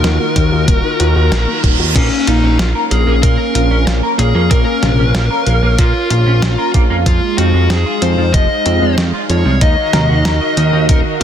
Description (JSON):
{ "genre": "synthwave", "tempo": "94 BPM", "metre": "4/4", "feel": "straight", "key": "Bb minor", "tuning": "A4 = 440 Hz", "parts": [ { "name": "dark smooth lead guitar", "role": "melody", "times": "0.0-11.2 s", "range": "Db4 to Eb5", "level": "-18 LUFS", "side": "left 2 dB", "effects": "overdrive, digital delay" }, { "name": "phased analog pad", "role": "sustained chords", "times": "0.0-11.2 s", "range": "Eb3 to F5", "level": "-19 LUFS", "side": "equal", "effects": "phaser, chorus" }, { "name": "warbly dusty pluck", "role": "arpeggios", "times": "0.0-1.9 s", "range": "Bb3 to Bb4", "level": "-25 LUFS", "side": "left 4 dB", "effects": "chorus, ping-pong delay" }, { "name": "fat analog bass", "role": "bass", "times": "0.0-11.2 s", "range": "Eb1 to Bb2", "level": "-14 LUFS", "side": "equal", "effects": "sidechain pumping" }, { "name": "clean 12-bit digital drum machine", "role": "drums", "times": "0.0-11.2 s", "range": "crash cymbal, hi-hat, snare drum, toms", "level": "-20 LUFS", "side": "equal", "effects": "none" }, { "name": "electronic kick drum", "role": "drums", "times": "0.4-11.0 s", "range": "none", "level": "-13 LUFS", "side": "equal", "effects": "none" }, { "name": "reverse cymbal", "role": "sound effects", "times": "1.1-2.0 s", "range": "none", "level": "-23 LUFS", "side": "right 6 dB", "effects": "none" }, { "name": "clean electric guitar", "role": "riff", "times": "2.0-11.2 s", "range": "F3 to Eb5", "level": "-23 LUFS", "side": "right 1 dB", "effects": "wide subtle chorus, ping-pong delay" } ], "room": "light reverb", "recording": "dense, heavily limited modern master", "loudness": "-11 LUFS", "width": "side -9 dB against mid", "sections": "0.0-11.2 A section", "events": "reverse cymbal 1.1-2.0", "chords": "0.0 Ebmadd9; 2.0 Bbm; 7.1 Fm7; 9.6 Ebmadd9" }